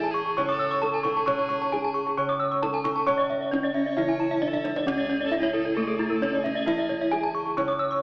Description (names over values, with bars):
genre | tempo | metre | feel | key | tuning
Balinese gamelan | 133 BPM | 4/4 | straight | C# pelog | A4 = 442 Hz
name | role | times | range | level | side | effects
gamelan-type bronze metallophone | melody | 0.0-8.0 s | A3 to C#5 | -27 LUFS | equal | none
clear fiddle | second line | 0.0-7.6 s | G#4 to C#5 | -35 LUFS | equal | none
gamelan-type bronze metallophone | accompaniment | 0.0-8.0 s | C#3 to C#4 | -36 LUFS | equal | none
gamelan-type bronze metallophone | arpeggios | 0.0-7.9 s | E4 to E6 | -27 LUFS | equal | none
gamelan-type bronze metallophone | arpeggios | 0.0-8.0 s | G#4 to D6+35c | -32 LUFS | equal | none
gamelan-type bossed gongs | bass | 0.0-8.0 s | C#2 to C#5 | -36 LUFS | equal | none
kendang | percussion | 0.0-8.0 s | none | -39 LUFS | equal | none
room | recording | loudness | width
wet concert hall reverb, RT60 1.9 s | AM radio sound | -23 LUFS | side -28 dB against mid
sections
0.0-8.0 A section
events
drum fill 4.3-4.9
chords
none